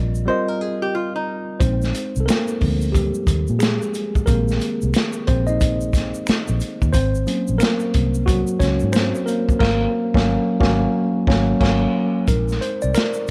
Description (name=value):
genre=R&B, neo-soul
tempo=90 BPM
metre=4/4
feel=swing 62% on 16ths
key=unclear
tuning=A4 = 438 Hz
part: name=mellow tine electric piano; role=accompaniment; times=0.0-13.3 s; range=Eb3 to Eb5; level=-24 LUFS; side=equal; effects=none
part: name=vintage muted fingered electric bass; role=bass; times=0.0-12.9 s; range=Ab1 to Bb2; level=-24 LUFS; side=equal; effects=none
part: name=egg shaker and finger snaps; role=percussion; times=0.1-13.3 s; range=none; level=-37 LUFS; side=equal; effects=none
part: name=archtop guitar, miked and amplified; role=second line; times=0.3-1.6 s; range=Eb4 to C5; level=-27 LUFS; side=equal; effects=none
part: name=crunchy breakbeat drum kit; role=drums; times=1.6-13.2 s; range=crash cymbal, hi-hat, kick drum, snare drum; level=-23 LUFS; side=equal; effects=none
room=light reverb, small room ambience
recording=dark, warm production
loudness=-20 LUFS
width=mono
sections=0.0-1.6 A section; 1.6-12.3 B section; 12.3-13.3 C section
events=tine electric piano solo 1.6-12.3, 12.3-13.3; band accent 9.6-12.3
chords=0.0 Bbsus24; 1.6 Bb9sus4; 6.9 Ab9sus4; 12.3 Bb9sus4